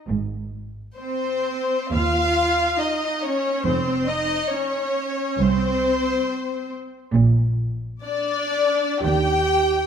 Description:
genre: classical, slow romantic movement for string orchestra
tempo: 58-72 BPM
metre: 4/4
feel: rubato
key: Ab major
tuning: A4 = 437 Hz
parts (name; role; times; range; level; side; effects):
- rich chamber double bass section; bass; 0.1-9.8 s; F1 to Eb2; -24 LUFS; right 2 dB; none
- rich symphonic cello section; bass; 0.1-9.8 s; C2 to Eb3; -26 LUFS; right 4 dB; none
- warm chamber violin section; melody; 1.0-9.9 s; C5 to G5; -24 LUFS; left 4 dB; none
- rich chamber violin section; second line; 1.0-9.9 s; C5 to G5; -27 LUFS; left 3 dB; none
- rich chamber viola section; accompaniment; 1.0-9.9 s; C4 to G4; -25 LUFS; right 2 dB; none
room: moderate scoring stage reverb, RT60 1.6 s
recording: none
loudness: -20 LUFS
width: side -7 dB against mid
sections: 0.0-9.9 A section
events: none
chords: 0.1 Ab; 3.6 F5; 7.1 Bb; 9.0 Eb

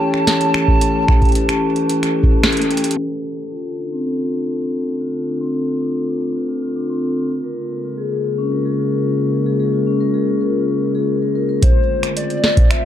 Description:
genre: IDM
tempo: 111 BPM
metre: 4/4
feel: straight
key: unclear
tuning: A4 = 444 Hz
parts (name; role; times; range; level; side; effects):
- warbly nostalgic lead; melody; 0.0-2.4, 11.6-12.8 s; C5 to A5; -21 LUFS; equal; analog chorus, vintage 12-bit sampler grit, analog delay
- warbly tape-like pad; sustained chords; 0.0-12.8 s; Db3 to Db5; -23 LUFS; right 2 dB; chorus, built-in reverb
- vibraphone with medium mallets; arpeggios; 0.0-11.6 s; C4 to G5; -20 LUFS; left 3 dB; low-pass filter, analog delay
- booming analog drum machine; drums; 0.1-3.0, 11.6-12.8 s; finger snaps, hi-hat, snare drum; -20 LUFS; right 1 dB; low-pass filter on hats, low-pass filter on snare, low-pass filter on room
- electronic kick drum; drums; 0.7-2.3, 11.6-12.7 s; none; -14 LUFS; equal; none
room: wet spring reverb, RT60 2.8 s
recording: echo-heavy mix, low-pass filter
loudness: -16 LUFS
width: side -10 dB against mid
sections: 0.0-3.0 A section; 3.0-11.6 B section; 11.6-12.8 C section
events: band accent 2.4; drum fill 2.7; filter sweep on vibraphone 3.0-11.6; filter sweep 3.0-11.6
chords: 0.0 A7; 3.0 Dm7; 7.3 Bbm7; 11.6 Dm7

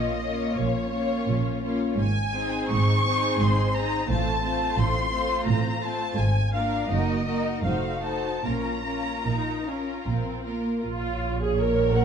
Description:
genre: classical, slow romantic movement for string orchestra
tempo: 72-88 BPM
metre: 3/4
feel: rubato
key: Bb minor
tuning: A4 = 439 Hz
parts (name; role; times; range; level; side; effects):
- warm symphonic violin section; melody; 0.0-12.0 s; Db5 to Db6; -29 LUFS; left 2 dB; none
- warm symphonic violin section; second line; 0.0-12.0 s; F4 to Gb5; -32 LUFS; left 3 dB; none
- rich symphonic viola section; accompaniment; 0.0-12.0 s; A3 to Bb4; -29 LUFS; right 1 dB; none
- warm symphonic cello section; bass; 0.0-12.0 s; F2 to Bb2; -29 LUFS; right 2 dB; none
- warm symphonic double bass section; bass; 0.0-12.0 s; F1 to Bb1; -28 LUFS; right 2 dB; none
room: moderate large studio reverb, RT60 1.4 s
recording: dark, warm production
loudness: -23 LUFS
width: side -7 dB against mid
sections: 0.0-10.8 A section; 10.8-12.0 A section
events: none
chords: 0.0 Bbm; 2.0 Ab; 4.1 F/A; 6.2 Bb7/Ab; 6.9 Ebm/Gb; 7.7 F7b9; 8.4 Bbm

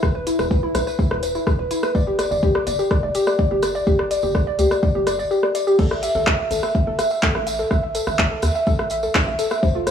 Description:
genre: melodic techno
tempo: 125 BPM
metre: 4/4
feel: straight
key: unclear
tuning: A4 = 440 Hz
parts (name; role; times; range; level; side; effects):
- woody wave-folded pluck; arpeggios; 0.0-9.9 s; E4 to E5; -20 LUFS; left 1 dB; chorus, sidechain pumping, analog delay
- tight sequencer bass; bass; 0.0-9.9 s; E1 to E2; -28 LUFS; equal; sidechain pumping
- deep house drum kit; drums; 0.0-9.9 s; crash cymbal, handclaps, hi-hat, rim click; -24 LUFS; equal; studio reverb
- electronic kick drum; drums; 0.0-9.7 s; none; -20 LUFS; equal; studio reverb
- tambourine; percussion; 0.0-9.9 s; none; -35 LUFS; right 3 dB; none
room: light reverb, digital ambience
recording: dry, gritty hardware recording, small room ambience, faint mains hum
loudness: -17 LUFS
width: side -8 dB against mid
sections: 0.0-9.9 A section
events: none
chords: 0.0 E5; 1.9 G5; 5.8 A5

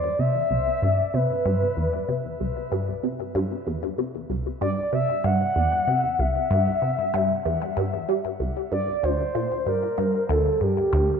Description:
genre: ambient, sequencer-driven space music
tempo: 95 BPM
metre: 4/4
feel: straight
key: C lydian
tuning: A4 = 439 Hz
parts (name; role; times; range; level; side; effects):
- expressive portamento lead; melody; 0.0-11.2 s; G4 to F#5; -24 LUFS; left 1 dB; chorus, ping-pong delay
- resonant blip pluck; riff; 0.2-11.1 s; C2 to G3; -25 LUFS; equal; phaser, ping-pong delay
room: wet spring reverb, RT60 2.7 s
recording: echo-heavy mix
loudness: -22 LUFS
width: side -6 dB against mid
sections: 0.0-11.2 A section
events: none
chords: 0.0 Cmaj7; 8.7 Gm

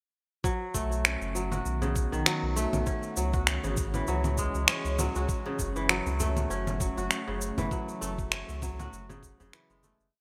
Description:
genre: organic downtempo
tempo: 99 BPM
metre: 4/4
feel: swing 55% on 16ths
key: F# dorian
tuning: A4 = 437 Hz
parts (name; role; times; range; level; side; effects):
- ethereal airy pad; sustained chords; 1.6-10.1 s; D#3 to C#5; -41 LUFS; equal; ensemble chorus, built-in reverb, sidechain pumping, shimmer reverb
- kora; arpeggios; 0.4-10.2 s; C#3 to F#4; -36 LUFS; equal; digital delay, shimmer reverb
- electronic kick drum; drums; 0.4-9.4 s; none; -36 LUFS; equal; none
- electronic shaker, finger snaps and congas; drums; 0.4-10.1 s; none; -32 LUFS; equal; gated reverb
- warm sub bass; bass; 0.7-10.1 s; F#1 to C#2; -35 LUFS; equal; tube saturation
- djembe; percussion; 5.5-9.8 s; none; -43 LUFS; equal; none
room: moderate plate reverb, RT60 2.9 s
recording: bright 1980s-style digital production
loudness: -29 LUFS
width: mono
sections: 0.4-10.1 groove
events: fade-out 6.9-10.1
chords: 0.4 Badd9; 2.9 C#m; 5.3 F#m

